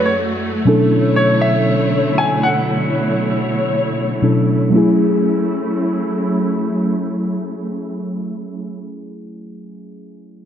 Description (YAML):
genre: contemporary R&B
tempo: 59 BPM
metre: 4/4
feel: straight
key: F# minor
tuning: A4 = 440 Hz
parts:
  - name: clear baby grand piano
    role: melody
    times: 0.0-3.7 s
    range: C#5 to G#5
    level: -20 LUFS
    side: equal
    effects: digital delay
  - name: muted felt-like synth keys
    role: accompaniment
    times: 0.0-10.5 s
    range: B2 to A4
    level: -18 LUFS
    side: equal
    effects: chorus
  - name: warm studio string section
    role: sustained chords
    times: 0.0-8.8 s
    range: F#2 to C#5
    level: -20 LUFS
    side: right 1 dB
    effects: none
room: moderate concert hall reverb, RT60 1.7 s, small room ambience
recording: dark, warm production, low-pass filter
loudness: -15 LUFS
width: side -9 dB against mid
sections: 0.0-4.7 A section; 4.7-8.8 B section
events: none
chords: 0.0 F#m7; 0.7 Bm11; 4.7 F#m7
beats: | 0.66 1.68 2.69 3.71 | 4.73 5.75 6.76 7.78